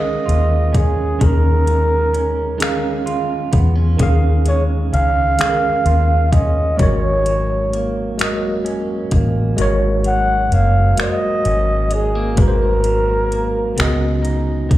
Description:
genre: slow six-eight R&B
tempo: 43 BPM (dotted quarters)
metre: 6/8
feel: straight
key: Eb minor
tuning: A4 = 440 Hz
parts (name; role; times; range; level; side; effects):
- breathy flugelhorn; melody; 0.0-14.2 s; Ab4 to Gb5; -19 LUFS; right 1 dB; slapback echo
- electric guitar at the edge of break-up; second line; 0.0-14.8 s; Ab2 to F4; -25 LUFS; right 4 dB; spring reverb, tape echo
- tine electric piano; accompaniment; 0.0-14.8 s; Db3 to F5; -22 LUFS; right 1 dB; overdrive, fast stereo tremolo, slapback echo
- vintage muted fingered electric bass; bass; 0.3-14.8 s; Gb1 to Fb2; -17 LUFS; equal; none
- smooth R&B drum kit; drums; 0.3-14.8 s; finger snaps, hi-hat, kick drum; -19 LUFS; equal; none
room: digital ambience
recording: live gig heard through the venue's PA, club reverb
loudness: -14 LUFS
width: side -14 dB against mid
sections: 0.0-14.8 A section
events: kick muted 9.6-12.4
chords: 0.0 Eb9sus4; 6.8 Ab9sus4; 13.8 Db9sus4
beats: | 1.21 2.61 | 4.00 5.40 | 6.79 8.19 | 9.59 10.98 | 12.38 13.77

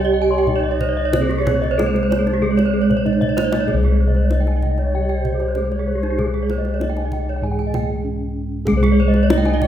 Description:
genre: Balinese gamelan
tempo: 96 BPM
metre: 4/4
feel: straight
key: C pelog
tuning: A4 = 439 Hz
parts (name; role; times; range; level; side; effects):
- gamelan-type bronze metallophone; melody; 0.0-9.7 s; Ab3 to Ab4; -22 LUFS; equal; none
- gamelan-type bronze metallophone; accompaniment; 0.0-9.7 s; C3 to Ab3; -27 LUFS; right 4 dB; none
- gamelan-type bronze metallophone; arpeggios; 0.0-9.6 s; Eb4 to Ab5; -25 LUFS; right 6 dB; none
- gamelan-type bossed gongs; bass; 0.0-9.7 s; C2 to Ab4; -20 LUFS; left 1 dB; none
- gamelan-type bronze metallophone; arpeggios; 0.1-9.7 s; Eb4 to C6; -26 LUFS; left 3 dB; none
- bansuri; second line; 0.3-9.7 s; G4 to Eb5; -27 LUFS; right 1 dB; none
- kendang; percussion; 0.5-9.7 s; none; -26 LUFS; equal; none
room: wet recital hall reverb, RT60 1.4 s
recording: recorded in a church or concert hall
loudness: -16 LUFS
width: side -10 dB against mid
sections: 0.0-3.7 A section; 3.7-9.7 B section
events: drum fill 2.9-3.7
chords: none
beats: 0.47 | 1.13 1.78 2.43 3.06 | 3.69 4.31 4.93 5.56 | 6.18 6.80 7.43 8.05 | 8.67 9.30

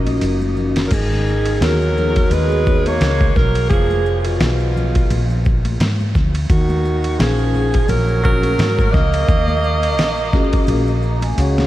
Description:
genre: hip hop, jazz-hop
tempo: 86 BPM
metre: 4/4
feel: swing 57% on 16ths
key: Eb minor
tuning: A4 = 439 Hz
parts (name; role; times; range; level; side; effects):
- breathy alto saxophone; melody; 0.0-11.4 s; F4 to Eb5; -22 LUFS; right 1 dB; ping-pong delay
- warm tenor saxophone; second line; 0.0-11.4 s; Cb3 to Bb3; -25 LUFS; right 2 dB; ping-pong delay
- vibraphone with soft mallets; accompaniment; 0.0-2.9, 7.2-11.7 s; Cb4 to Bb5; -24 LUFS; left 2 dB; none
- woody fretless electric bass; bass; 0.0-11.7 s; F1 to Ab2; -18 LUFS; equal; none
- dusty soul sampler-style drum kit; drums; 0.1-11.7 s; crash cymbal, hi-hat, kick drum, ride cymbal, snare drum; -19 LUFS; equal; overdrive
- congas and maracas; percussion; 0.1-11.7 s; none; -31 LUFS; left 2 dB; none
room: moderate cathedral reverb, RT60 6.6 s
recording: dreamy mix soaked in reverb, vinyl crackle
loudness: -14 LUFS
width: side -14 dB against mid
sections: 0.9-11.7 A section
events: drum fill 0.2-0.9, 10.7-11.7; vibraphone fill 10.7-11.7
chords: 0.0 Ebm7; 0.9 Abm9; 3.7 Fdim; 5.1 Bb7; 6.5 Ebm11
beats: 0.22 | 0.92 1.61 2.31 3.01 | 3.71 4.41 5.10 5.80 | 6.50 7.20 7.89 8.59 | 9.29 9.99 10.69 11.38

